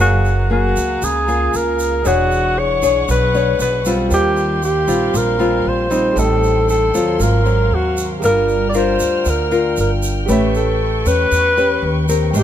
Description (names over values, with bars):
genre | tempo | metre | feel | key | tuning
bossa nova | 117 BPM | 4/4 | straight | unclear | A4 = 440 Hz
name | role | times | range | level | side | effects
mellow alto saxophone | melody | 0.0-12.4 s | Gb4 to D5 | -18 LUFS | equal | none
nylon-string guitar | accompaniment | 0.0-12.4 s | Ab2 to C#5 | -19 LUFS | left 3 dB | none
warm grand piano | accompaniment | 0.0-12.4 s | G4 to G5 | -28 LUFS | right 4 dB | none
warm studio string section | sustained chords | 0.0-12.4 s | G4 to F6 | -28 LUFS | left 1 dB | none
upright bass | bass | 0.0-12.4 s | E1 to E2 | -19 LUFS | right 1 dB | none
tube shaker | percussion | 0.3-12.4 s | none | -30 LUFS | right 4 dB | none
room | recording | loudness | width
light reverb | none | -14 LUFS | side -10 dB against mid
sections
0.0-12.4 A section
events
none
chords
0.0 Gbmaj9; 2.0 E13; 4.1 Eb69; 6.2 Am7b5; 7.2 Ab13; 8.2 Gm7; 10.3 A9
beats
0.50 1.02 1.53 | 2.05 2.56 3.08 3.59 | 4.11 4.62 5.14 5.65 | 6.17 6.68 7.20 7.71 | 8.23 8.74 9.26 9.77 | 10.29 10.80 11.31 11.83 | 12.34